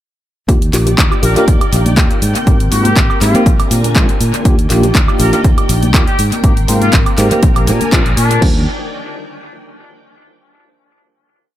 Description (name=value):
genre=filtered disco house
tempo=121 BPM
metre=4/4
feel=swing 54% on 16ths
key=Eb major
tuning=A4 = 435 Hz
part: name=mellow tine electric piano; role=accompaniment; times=0.5-8.6 s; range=F3 to G4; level=-18 LUFS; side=equal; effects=medium tremolo, phaser, sidechain pumping, tape echo
part: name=string machine, full ensemble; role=sustained chords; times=0.5-8.7 s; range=C4 to Ab5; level=-22 LUFS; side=equal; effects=ensemble chorus, sidechain pumping
part: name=fingered electric bass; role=bass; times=0.5-8.7 s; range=Ab1 to Bb2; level=-15 LUFS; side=equal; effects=sidechain pumping
part: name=house drum kit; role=drums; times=0.5-8.4 s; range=cabasa, handclaps, hi-hat, woodblock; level=-18 LUFS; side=equal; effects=sidechain pumping on hats, small room ambience, sidechain pumping on perc, tape echo
part: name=punchy analog drum machine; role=drums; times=0.5-8.5 s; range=crash cymbal, kick drum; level=-12 LUFS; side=equal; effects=small room ambience
part: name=egg shaker and congas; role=percussion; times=0.5-8.4 s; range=none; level=-25 LUFS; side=left 3 dB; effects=none
part: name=dark trumpet section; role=melody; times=1.2-8.4 s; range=D4 to Bb4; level=-22 LUFS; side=left 2 dB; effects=sidechain pumping, tape echo
room=light reverb, digital ambience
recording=echo-heavy mix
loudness=-9 LUFS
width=side -13 dB against mid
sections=0.5-8.4 drop; 8.4-10.4 final chord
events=drop 0.5-8.4; band accent 7.9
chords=0.5 Ebmaj7; 2.2 Abmaj9; 3.5 Bb7; 4.5 Ebmaj7; 6.2 Abmaj9; 7.4 Bb7; 8.4 Ebmaj7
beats=| 0.49 0.98 1.48 1.97 | 2.47 2.96 3.46 3.96 | 4.45 4.95 5.45 5.94 | 6.44 6.93 7.43 7.92 | 8.42